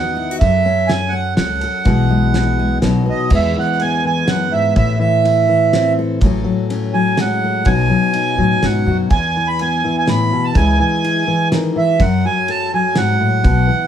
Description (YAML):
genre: acoustic folk duo or small band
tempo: 124 BPM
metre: 3/4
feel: straight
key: E major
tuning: A4 = 440 Hz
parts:
  - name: accordion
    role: melody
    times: 0.0-13.9 s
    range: D#5 to B5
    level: -17 LUFS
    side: right 5 dB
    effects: none
  - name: fingerpicked steel-string acoustic guitar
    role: accompaniment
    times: 0.0-13.9 s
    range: E2 to A4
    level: -18 LUFS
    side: left 3 dB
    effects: none
  - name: upright bass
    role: bass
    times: 0.0-13.7 s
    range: A1 to A2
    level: -18 LUFS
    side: equal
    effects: none
  - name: cloth-damped thuddy drum kit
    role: drums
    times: 0.4-13.6 s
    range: crash cymbal, kick drum, ride cymbal, snare drum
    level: -19 LUFS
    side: equal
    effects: none
room: wet studio ambience, RT60 0.5 s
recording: heard from further back in the room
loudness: -13 LUFS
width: side -9 dB against mid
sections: 0.0-3.3 A section; 3.3-13.9 B section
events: none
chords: 0.4 F#m; 1.9 E/B; 2.8 B; 3.3 E; 4.8 Am; 6.2 F#madd9/A; 7.7 Badd9; 9.1 E5; 10.6 C#m; 12.0 F#m